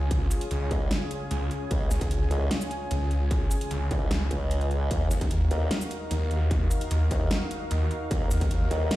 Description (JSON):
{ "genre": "heavy wobble dubstep", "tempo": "150 BPM", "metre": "4/4", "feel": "half-time", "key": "unclear", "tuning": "A4 = 443 Hz", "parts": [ { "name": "supersaw pad", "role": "sustained chords", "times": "0.0-9.0 s", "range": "Db3 to Ab5", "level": "-34 LUFS", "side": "equal", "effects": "sidechain pumping, low-pass filter" }, { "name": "snarling distorted saw bass", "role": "bass", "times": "0.0-8.7 s", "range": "Db2 to Eb2", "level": "-26 LUFS", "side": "equal", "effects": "distortion, overdrive" }, { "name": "dubstep drum kit", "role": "drums", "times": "0.1-9.0 s", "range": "hi-hat, shaker, snare drum", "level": "-33 LUFS", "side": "equal", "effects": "none" }, { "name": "electronic kick drum", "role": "drums", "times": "0.1-8.5 s", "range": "none", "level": "-28 LUFS", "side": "equal", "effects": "distortion" }, { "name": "formant-sweep wobble bass", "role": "bass", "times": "0.7-8.9 s", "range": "Db2 to Eb2", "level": "-27 LUFS", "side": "equal", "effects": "chorus, overdrive" } ], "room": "little or no reverb", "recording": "played on a big sound system in a bare room, stone room reverb", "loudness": "-24 LUFS", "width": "side -16 dB against mid", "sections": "0.0-9.0 A section", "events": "none", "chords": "0.0 Db; 4.9 Ebmadd9", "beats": "| 0.11 0.51 0.91 1.31 | 1.71 2.11 2.51 2.91 | 3.31 3.71 4.11 4.51 | 4.91 5.31 5.71 6.11 | 6.51 6.91 7.31 7.71 | 8.11 8.51 8.91" }